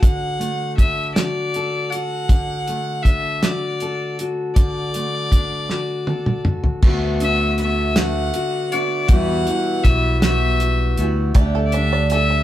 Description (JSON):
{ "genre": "indie folk with a building arrangement", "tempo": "53 BPM (dotted quarters)", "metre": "6/8", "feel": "straight", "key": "unclear", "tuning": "A4 = 437 Hz", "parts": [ { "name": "clear fiddle", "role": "melody", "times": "0.0-12.4 s", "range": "D5 to F#5", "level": "-23 LUFS", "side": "left 2 dB", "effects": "none" }, { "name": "fingerpicked steel-string acoustic guitar", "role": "accompaniment", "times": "0.0-12.4 s", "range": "D3 to B4", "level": "-25 LUFS", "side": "left 1 dB", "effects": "none" }, { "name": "cloth-damped thuddy drum kit", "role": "drums", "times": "0.0-12.3 s", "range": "crash cymbal, hi-hat, kick drum, snare drum, toms", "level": "-17 LUFS", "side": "equal", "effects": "none" }, { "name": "picked acoustic archtop guitar", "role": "accompaniment", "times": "6.8-12.4 s", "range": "E2 to G4", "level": "-27 LUFS", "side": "equal", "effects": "none" }, { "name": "fingered electric bass", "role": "bass", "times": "6.8-12.4 s", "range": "B1 to E2", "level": "-20 LUFS", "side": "equal", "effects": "none" }, { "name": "mellow tonewheel organ", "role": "sustained chords", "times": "11.4-12.4 s", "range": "D3 to G4", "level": "-30 LUFS", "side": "right 4 dB", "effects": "none" }, { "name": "bluegrass banjo", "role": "arpeggios", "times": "11.4-12.4 s", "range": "D4 to D5", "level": "-24 LUFS", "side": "right 7 dB", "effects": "none" } ], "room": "moderate small room reverb, RT60 0.5 s", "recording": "band playing live in one room", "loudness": "-17 LUFS", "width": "side -13 dB against mid", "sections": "0.0-6.8 A section; 6.8-12.4 B section", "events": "drum fill 5.7-6.8", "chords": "0.0 D; 6.8 D6; 9.1 Emadd9; 11.4 Dsus4" }